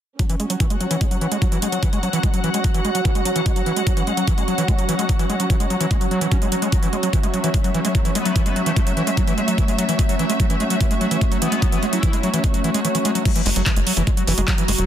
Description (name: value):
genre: psychedelic trance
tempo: 147 BPM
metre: 4/4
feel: straight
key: F# minor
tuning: A4 = 441 Hz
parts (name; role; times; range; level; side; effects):
- evolving wavetable pad; sustained chords; 0.5-14.9 s; F#3 to F#4; -26 LUFS; equal; chorus, built-in reverb, sidechain pumping
- overdriven acid bass; riff; 0.2-14.8 s; E3 to C#4; -24 LUFS; equal; auto-pan, sidechain pumping, dub echo
- drum and bass drum kit; drums; 0.2-14.9 s; crash cymbal, handclaps, hi-hat; -27 LUFS; right 1 dB; overdrive
- electronic kick drum; drums; 0.2-14.6 s; none; -19 LUFS; equal; overdrive
- dark studio string section; texture; 0.2-14.9 s; C#4 to F#5; -27 LUFS; right 1 dB; sidechain pumping
- metallic wobble bass; second line; 8.2-8.8, 11.4-12.2 s; A3 to E4; -31 LUFS; left 5 dB; lush chorus, sidechain pumping, high-pass filter, ping-pong delay
- tight sequencer bass; bass; 13.5-14.9 s; E1 to F#1; -21 LUFS; equal; none
room: light reverb, digital ambience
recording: dense, heavily limited modern master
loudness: -17 LUFS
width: side -10 dB against mid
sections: 0.2-13.3 A section; 13.3-14.9 B section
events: filter sweep on acid bass 0.2-13.3; kick drops out 12.8-13.3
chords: 0.2 F#5